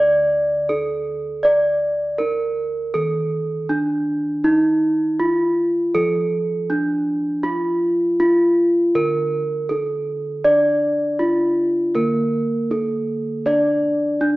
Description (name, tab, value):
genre	Javanese gamelan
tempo	80 BPM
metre	4/4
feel	straight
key	D pelog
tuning	A4 = 440 Hz
part	gamelan-type bronze metallophone	melody	0.0-14.4 s	D4 to D5	-18 LUFS	right 1 dB	none
part	gamelan-type bossed gongs	bass	0.0-14.4 s	D2 to D5	-28 LUFS	equal	none
part	gamelan-type bronze metallophone	accompaniment	10.4-14.4 s	Bb3-20c to D4	-23 LUFS	equal	none
room	wet recital hall reverb, RT60 1.4 s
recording	recorded in a church or concert hall, small speaker sound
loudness	-17 LUFS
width	side -19 dB against mid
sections	0.0-14.4 A section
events	none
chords	none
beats	0.70 | 1.45 2.20 2.95 3.70 | 4.45 5.20 5.95 6.70 | 7.45 8.20 8.95 9.70 | 10.45 11.20 11.95 12.70 | 13.45 14.20